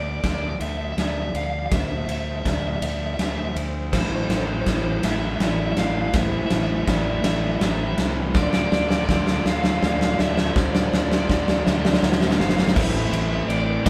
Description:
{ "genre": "post-rock", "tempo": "54 BPM (dotted quarters)", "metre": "6/8", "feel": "straight", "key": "unclear", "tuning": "A4 = 441 Hz", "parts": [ { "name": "overdriven semi-hollow guitar", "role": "melody", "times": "0.0-13.9 s", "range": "C5 to F5", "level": "-32 LUFS", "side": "equal", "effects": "none" }, { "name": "twelve-string electric guitar", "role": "arpeggios", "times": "0.0-13.9 s", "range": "A2 to E4", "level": "-37 LUFS", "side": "equal", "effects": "none" }, { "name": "vibraphone with medium hard mallets", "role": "arpeggios", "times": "0.0-12.8 s", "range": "C5 to E6", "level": "-36 LUFS", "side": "equal", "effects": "none" }, { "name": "fuzz fingered electric bass", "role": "bass", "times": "0.0-13.9 s", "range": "G1 to D2", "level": "-29 LUFS", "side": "equal", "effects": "overdrive" }, { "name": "big rock drum kit", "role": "drums", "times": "0.2-13.9 s", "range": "crash cymbal, kick drum, ride cymbal, snare drum", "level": "-25 LUFS", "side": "equal", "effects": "none" }, { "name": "distorted electric guitar", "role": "riff", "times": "3.9-13.9 s", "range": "A2 to E4", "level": "-30 LUFS", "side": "equal", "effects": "distortion" }, { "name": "fuzz guitar", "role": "riff", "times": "12.8-13.9 s", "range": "A2 to A3", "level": "-30 LUFS", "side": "equal", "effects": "distortion" } ], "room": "wet studio reverb, RT60 0.6 s", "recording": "band playing live in one room", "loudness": "-22 LUFS", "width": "mono", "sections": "0.0-12.8 A section; 12.8-13.9 B section", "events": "build-up 0.0-12.8; drum fill 0.0-12.8", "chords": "0.0 Dmadd9; 3.9 Am; 8.4 Dmadd9; 12.8 Am" }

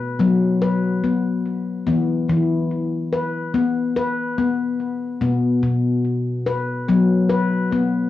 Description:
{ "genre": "world meditative", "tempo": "72 BPM", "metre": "4/4", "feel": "swing 54% on 16ths", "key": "unclear", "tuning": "A4 = 437 Hz", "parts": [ { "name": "handpan", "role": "solo", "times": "0.0-8.1 s", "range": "B2 to B4", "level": "-18 LUFS", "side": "left 3 dB", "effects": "cassette tape, tape echo" } ], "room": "wet studio reverb, RT60 0.6 s", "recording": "home recording on cassette", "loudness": "-18 LUFS", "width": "side -13 dB against mid", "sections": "0.0-8.1 A section", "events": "none", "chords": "0.0 B5; 1.9 E5; 5.2 B5" }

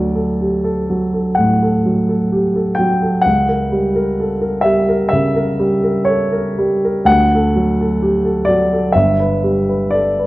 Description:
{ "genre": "classical, romantic nocturne for solo piano", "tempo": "56-66 BPM", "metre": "4/4", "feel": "rubato", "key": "D major", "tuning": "A4 = 440 Hz", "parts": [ { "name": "warm grand piano", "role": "solo", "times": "0.0-10.3 s", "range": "G1 to G5", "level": "-13 LUFS", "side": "equal", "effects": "none" } ], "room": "moderate recital hall reverb, RT60 1.4 s", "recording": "dark, warm production", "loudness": "-13 LUFS", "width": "side -18 dB against mid", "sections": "0.0-10.3 A section", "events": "none", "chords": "0.0 D; 3.3 C#dim7; 7.1 D; 8.9 G" }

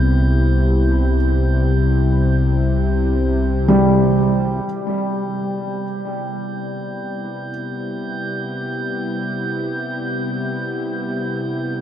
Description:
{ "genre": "ambient", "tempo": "free time", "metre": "none", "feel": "none", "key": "C major", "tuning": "A4 = 440 Hz", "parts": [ { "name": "warm analog pad", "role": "sustained chords", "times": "0.0-11.8 s", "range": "C3 to G4", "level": "-21 LUFS", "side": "left 1 dB", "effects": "chorus" }, { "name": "felt-muted upright piano", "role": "arpeggios", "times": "0.0-7.5 s", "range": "G3 to B5", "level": "-21 LUFS", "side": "right 1 dB", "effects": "tape echo" }, { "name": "warm sub bass", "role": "bass", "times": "0.0-4.6 s", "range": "C2", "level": "-19 LUFS", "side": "equal", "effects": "none" }, { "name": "glass harmonica", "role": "texture", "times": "0.0-11.8 s", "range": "G6", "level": "-31 LUFS", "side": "right 4 dB", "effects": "none" } ], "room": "moderate huge ambient reverb, RT60 7.5 s", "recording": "dark, warm production", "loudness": "-17 LUFS", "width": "side -10 dB against mid", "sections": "0.0-4.6 A section; 4.6-11.8 B section", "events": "fade-out on glass harmonica 0.0-4.6; fade-in on analog synth pad 4.6-11.8", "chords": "0.0 Cmaj7" }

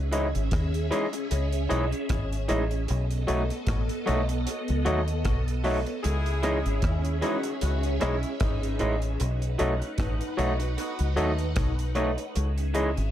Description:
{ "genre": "lovers rock reggae", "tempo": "76 BPM", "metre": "4/4", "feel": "swing 56% on 16ths", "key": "C# minor", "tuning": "A4 = 439 Hz", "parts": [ { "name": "phased string machine", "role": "second line", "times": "0.0-13.1 s", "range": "B3 to F#5", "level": "-34 LUFS", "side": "equal", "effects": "ensemble chorus, phaser" }, { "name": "deep dub fingered electric bass", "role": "bass", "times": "0.0-13.1 s", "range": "G#1 to D#2", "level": "-27 LUFS", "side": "equal", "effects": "none" }, { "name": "barky tine electric piano", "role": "accompaniment", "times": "0.1-12.9 s", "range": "E4 to D#5", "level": "-32 LUFS", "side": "left 4 dB", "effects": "dub echo" }, { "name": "electric guitar through a small old amp", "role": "stabs", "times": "0.1-12.9 s", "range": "E3 to D#4", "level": "-32 LUFS", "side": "right 4 dB", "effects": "none" }, { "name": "deep reggae drum kit", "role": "drums", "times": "0.1-13.1 s", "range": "hi-hat, kick drum, rim click", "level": "-31 LUFS", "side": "equal", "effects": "dub echo" }, { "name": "clear saxophone section", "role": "second line", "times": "6.0-11.5 s", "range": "D#3 to G#4", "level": "-37 LUFS", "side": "left 1 dB", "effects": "dub echo" } ], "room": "studio reverb", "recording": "none", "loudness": "-24 LUFS", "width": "side -11 dB against mid", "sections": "0.0-13.1 A section", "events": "none", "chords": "0.0 C#madd9; 2.9 B7; 6.0 C#madd9; 9.2 B7; 12.4 C#madd9" }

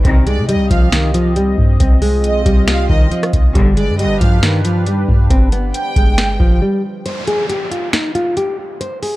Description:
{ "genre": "hip hop, trap", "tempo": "137 BPM", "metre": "4/4", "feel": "half-time", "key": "unclear", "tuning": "A4 = 441 Hz", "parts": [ { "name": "dark analog pad", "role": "sustained chords", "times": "0.0-7.0 s", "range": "C4 to Eb5", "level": "-26 LUFS", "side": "right 2 dB", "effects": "chorus" }, { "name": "warm symphonic string section", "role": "stabs", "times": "0.0-0.4, 3.6-3.9 s", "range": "B1 to Eb3", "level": "-24 LUFS", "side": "left 2 dB", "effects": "digital delay" }, { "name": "clean 808-style bass", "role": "bass", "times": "0.0-6.6 s", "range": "G1 to C3", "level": "-16 LUFS", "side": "equal", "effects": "none" }, { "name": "booming analog drum machine", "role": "drums", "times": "0.0-9.1 s", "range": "finger snaps, hi-hat, kick drum, rim click, snare drum", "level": "-14 LUFS", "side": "equal", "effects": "none" }, { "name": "nylon-string guitar", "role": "melody", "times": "0.1-9.2 s", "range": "Eb3 to C5", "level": "-18 LUFS", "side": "equal", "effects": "digital delay" }, { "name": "warm studio violin section", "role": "second line", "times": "0.3-6.6 s", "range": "D5 to G5", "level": "-23 LUFS", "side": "right 2 dB", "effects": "digital delay" }, { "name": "downlifter", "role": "sound effects", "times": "7.1-9.2 s", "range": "none", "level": "-27 LUFS", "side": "equal", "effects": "none" } ], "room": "studio ambience", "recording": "dark, warm production", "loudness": "-12 LUFS", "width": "side -18 dB against mid", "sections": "0.0-7.1 A section; 7.1-9.2 B section", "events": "break 6.6-7.1, 7.1-9.2", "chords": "0.0 Cm; 3.6 G; 7.1 N.C." }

